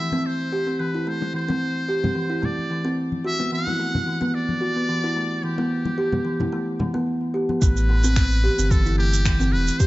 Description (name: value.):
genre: organic downtempo.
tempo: 110 BPM.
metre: 4/4.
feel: swing 54% on 16ths.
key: A dorian.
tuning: A4 = 438 Hz.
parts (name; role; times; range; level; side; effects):
trumpet with metal mute; melody; 0.0-9.9 s; G4 to F#5; -28 LUFS; equal; ping-pong delay.
kalimba; arpeggios; 0.0-9.9 s; E3 to G4; -24 LUFS; equal; ping-pong delay.
congas and bongos; percussion; 0.1-7.6 s; none; -28 LUFS; left 2 dB; none.
warm sub bass; bass; 7.6-9.7 s; E1 to A1; -20 LUFS; equal; sidechain pumping.
electronic kick drum; drums; 7.6-9.9 s; none; -20 LUFS; equal; none.
electronic shaker and finger snaps; drums; 7.6-9.9 s; none; -30 LUFS; right 3 dB; none.
room: studio ambience.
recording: nothing above 7.7 kHz.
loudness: -20 LUFS.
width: side -18 dB against mid.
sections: 0.0-7.6 A section; 7.6-9.9 B section.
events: none.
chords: 0.0 Am; 3.3 Bm7; 5.4 Em; 7.6 Am.